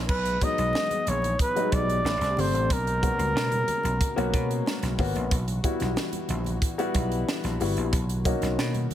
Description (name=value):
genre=polished 1980s jazz-funk pop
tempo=92 BPM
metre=4/4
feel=straight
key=unclear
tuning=A4 = 440 Hz
part: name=warm concert grand piano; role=accompaniment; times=0.0-8.9 s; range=E3 to F#4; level=-30 LUFS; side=left 3 dB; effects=wide subtle chorus
part: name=vintage slap bass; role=bass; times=0.0-8.9 s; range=G1 to B2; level=-28 LUFS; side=equal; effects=none
part: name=breathy flugelhorn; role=melody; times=0.1-5.0 s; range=A#4 to D#5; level=-27 LUFS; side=equal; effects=none
part: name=warm analog pad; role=sustained chords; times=0.1-8.9 s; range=C3 to A#4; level=-38 LUFS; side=equal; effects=chorus
part: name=crisp fusion drum kit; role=drums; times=0.1-8.9 s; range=crash cymbal, hi-hat, kick drum, snare drum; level=-29 LUFS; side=right 1 dB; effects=none
part: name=congas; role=percussion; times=0.4-8.9 s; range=none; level=-41 LUFS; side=right 2 dB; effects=none
room=small room ambience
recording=none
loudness=-23 LUFS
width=side -11 dB against mid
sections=0.1-8.9 A section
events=none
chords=0.1 Emaj7/B; 2.0 Am7; 2.7 G#m11/B; 5.3 Emadd9; 7.9 Bmaj7